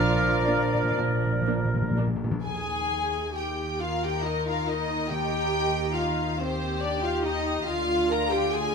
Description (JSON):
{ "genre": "classical, slow romantic movement for symphony orchestra", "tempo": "40-48 BPM (dotted quarters)", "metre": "6/8", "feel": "rubato", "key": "Eb major", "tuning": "A4 = 440 Hz", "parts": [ { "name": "clear studio violin section", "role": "melody", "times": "0.0-8.7 s", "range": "C5 to Bb5", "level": "-31 LUFS", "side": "left 2 dB", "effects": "none" }, { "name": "bright flute section", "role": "second line", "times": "0.0-2.1 s", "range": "D5", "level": "-32 LUFS", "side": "left 1 dB", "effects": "none" }, { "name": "dark studio violin section", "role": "second line", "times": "0.0-8.7 s", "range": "Eb4 to Bb4", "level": "-31 LUFS", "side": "left 6 dB", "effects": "none" }, { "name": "mellow clarinet", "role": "second line", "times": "0.0-1.7 s", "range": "D5", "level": "-38 LUFS", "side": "equal", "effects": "none" }, { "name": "warm oboe", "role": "second line", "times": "0.0-2.1 s", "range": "Bb4", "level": "-32 LUFS", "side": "equal", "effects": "none" }, { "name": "dark studio viola section", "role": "accompaniment", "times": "0.0-8.7 s", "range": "Bb3 to Bb4", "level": "-30 LUFS", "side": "right 1 dB", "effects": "none" }, { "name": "mellow bassoon", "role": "accompaniment", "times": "0.0-2.1 s", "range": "F3", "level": "-32 LUFS", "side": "equal", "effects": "none" }, { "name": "dark French horn section", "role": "sustained chords", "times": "0.0-2.1 s", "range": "F3 to D4", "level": "-34 LUFS", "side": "left 4 dB", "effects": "none" }, { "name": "mellow trumpet", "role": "stabs", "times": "0.0-2.1 s", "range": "Bb4", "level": "-30 LUFS", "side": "right 3 dB", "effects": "none" }, { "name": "dark chamber cello section", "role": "bass", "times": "0.0-8.7 s", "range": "D3 to F3", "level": "-36 LUFS", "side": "right 1 dB", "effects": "none" }, { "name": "rich studio double bass section", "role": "bass", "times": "0.0-8.7 s", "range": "Bb1 to Eb2", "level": "-32 LUFS", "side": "right 4 dB", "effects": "none" }, { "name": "timpani", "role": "percussion", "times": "0.0-6.3 s", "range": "Bb2 to Eb3", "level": "-31 LUFS", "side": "left 3 dB", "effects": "none" } ], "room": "moderate scoring stage reverb, RT60 1.6 s", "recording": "close, detailed microphones", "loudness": "-24 LUFS", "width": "side -5 dB against mid", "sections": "0.0-2.4 A section; 2.4-8.7 B section", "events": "timpani fill 0.0-2.4", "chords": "0.0 Bb; 2.4 Eb5; 7.6 Ddim" }